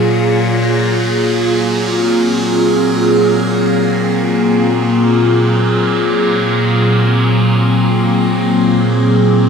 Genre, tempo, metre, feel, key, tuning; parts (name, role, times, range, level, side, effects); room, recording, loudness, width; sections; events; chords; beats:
ambient; free time; A4 = 442 Hz
evolving wavetable pad; solo; 0.0-9.5 s; Bb2 to Ab4; -11 LUFS; equal; phaser, built-in reverb, ping-pong delay
wet huge ambient reverb, RT60 7.6 s; -11 LUFS; side -6 dB against mid
0.0-9.5 A section
0.0 Ab13/Bb
free time